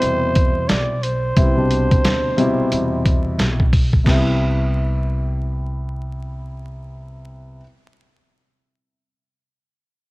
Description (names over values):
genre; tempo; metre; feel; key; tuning
hip hop, jazz-hop; 89 BPM; 4/4; swing 62% on 16ths; C major; A4 = 440 Hz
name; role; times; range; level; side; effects
trumpet with bucket mute; melody; 0.0-3.4 s; C5 to D5; -22 LUFS; right 1 dB; none
dark baby grand piano; accompaniment; 0.0-7.6 s; B2 to E4; -22 LUFS; left 1 dB; none
upright bass; bass; 0.0-7.6 s; B1 to E2; -23 LUFS; equal; none
dusty soul sampler-style drum kit; drums; 0.0-4.3 s; crash cymbal, hi-hat, kick drum, snare drum; -17 LUFS; equal; vintage 12-bit sampler grit
room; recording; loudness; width
light reverb, small room ambience; worn, warbling old tape, cassette tape, vinyl crackle, warbly pitch drift; -16 LUFS; side -21 dB against mid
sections
0.0-4.1 A section; 4.1-6.8 B section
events
none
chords
0.0 Cmaj7